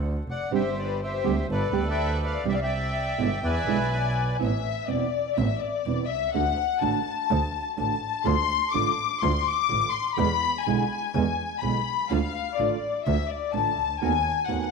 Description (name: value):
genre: tango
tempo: 124 BPM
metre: 4/4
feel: rubato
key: A harmonic minor from 4.4 s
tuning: A4 = 440 Hz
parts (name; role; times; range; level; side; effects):
- rich double bass; bass; 0.0-14.7 s; E1 to E2; -29 LUFS; right 1 dB; none
- bandoneon; melody; 0.3-4.4 s; G4 to G#5; -30 LUFS; right 3 dB; none
- warm symphonic violin section; second line; 0.3-14.7 s; B4 to D6; -26 LUFS; left 9 dB; none
- nylon-string guitar; accompaniment; 0.5-14.7 s; B2 to G4; -30 LUFS; right 11 dB; none
room: moderate echo chamber reverb, RT60 2.0 s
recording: 1960s-style stereo with parts hard left and right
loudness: -23 LUFS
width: side -4 dB against mid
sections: 0.0-4.4 A section; 4.4-14.7 B section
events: violin section solo 4.4-14.7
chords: 0.0 D; 0.5 Gsus4; 1.5 Gadd9; 2.5 Cadd9; 3.4 E7; 4.4 Amadd9; 6.3 D; 8.3 Dm; 10.2 E7; 12.1 Dm; 14.0 B7/D#